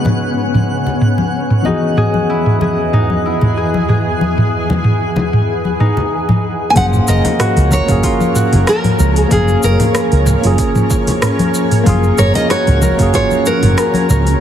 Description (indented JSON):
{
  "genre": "sunset chillout",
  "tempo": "94 BPM",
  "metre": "4/4",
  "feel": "swing 53% on 16ths",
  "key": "F# major",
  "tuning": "A4 = 440 Hz",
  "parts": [
    { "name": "tine electric piano", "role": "accompaniment", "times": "0.0-14.4 s", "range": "G#2 to F#5", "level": "-20 LUFS", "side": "moving between left 4 dB and right 4 dB", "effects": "auto-pan, tape echo" },
    { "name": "shimmering ambient pad", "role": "sustained chords", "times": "0.0-14.4 s", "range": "E2 to D#5", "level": "-20 LUFS", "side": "equal", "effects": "chorus, built-in reverb" },
    { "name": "Celtic harp", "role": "arpeggios", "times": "0.0-14.4 s", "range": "E#3 to A#4", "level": "-22 LUFS", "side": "left 1 dB", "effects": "tape echo" },
    { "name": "congas", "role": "percussion", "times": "0.0-14.1 s", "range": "none", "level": "-21 LUFS", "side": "left 3 dB", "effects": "none" },
    { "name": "twinkling granular texture", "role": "texture", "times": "0.0-6.8 s", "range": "F#5", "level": "-29 LUFS", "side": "right 1 dB", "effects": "built-in reverb" },
    { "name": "smooth R&B drum kit", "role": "drums", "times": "0.1-14.4 s", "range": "hi-hat, rim click, shaker, toms", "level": "-17 LUFS", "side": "right 1 dB", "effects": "none" },
    { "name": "nylon-string guitar", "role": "melody", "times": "6.7-14.4 s", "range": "G#4 to G#5", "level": "-17 LUFS", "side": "equal", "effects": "tape echo" },
    { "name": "fingered electric bass", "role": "bass", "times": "6.8-14.3 s", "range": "F#1 to C#2", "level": "-13 LUFS", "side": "equal", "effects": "none" },
    { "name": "electronic kick drum", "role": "drums", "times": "6.8-13.3 s", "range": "none", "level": "-18 LUFS", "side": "right 1 dB", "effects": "none" }
  ],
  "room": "moderate lush hall reverb, RT60 2.5 s",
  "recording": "heavily compressed radio sound, multiband compression",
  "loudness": "-11 LUFS",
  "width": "side -10 dB against mid",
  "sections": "0.0-6.8 A section; 6.8-14.4 B section",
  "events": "filter sweep on ambient pad 0.0-6.8",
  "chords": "0.0 G#m11; 1.7 Emaj7; 6.8 F#maj7"
}